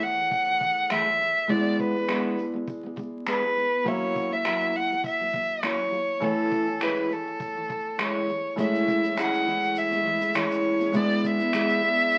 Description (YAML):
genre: acoustic pop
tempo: 102 BPM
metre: 4/4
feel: swing 55% on 16ths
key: A major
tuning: A4 = 441 Hz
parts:
  - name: warm violin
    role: melody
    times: 0.0-12.2 s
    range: A4 to F#5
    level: -27 LUFS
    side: equal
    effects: none
  - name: picked steel-string acoustic guitar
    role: accompaniment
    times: 0.0-12.2 s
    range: A2 to G#4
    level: -31 LUFS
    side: equal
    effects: none
  - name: warm upright piano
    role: accompaniment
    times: 0.0-12.2 s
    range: G#3 to G#5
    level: -35 LUFS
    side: equal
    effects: none
  - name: cloth-damped thuddy drum kit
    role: drums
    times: 0.0-12.2 s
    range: finger snaps, kick drum, shaker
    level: -34 LUFS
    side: equal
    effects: none
  - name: tube shaker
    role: percussion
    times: 8.6-12.2 s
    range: none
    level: -55 LUFS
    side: equal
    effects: none
room: moderate club reverb, RT60 0.9 s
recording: very old 78 rpm record, vinyl crackle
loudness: -25 LUFS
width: mono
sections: 0.0-8.6 A section; 8.6-12.2 B section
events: none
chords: 0.0 Amaj7; 1.5 E7/G#; 3.9 F#7; 6.2 Amaj7; 10.9 E7/G#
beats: 0.31 0.90 | 1.49 2.08 2.67 3.27 | 3.86 4.45 5.04 5.63 | 6.22 6.81 7.40 7.99 | 8.58 9.17 9.76 10.35 | 10.95 11.54 12.12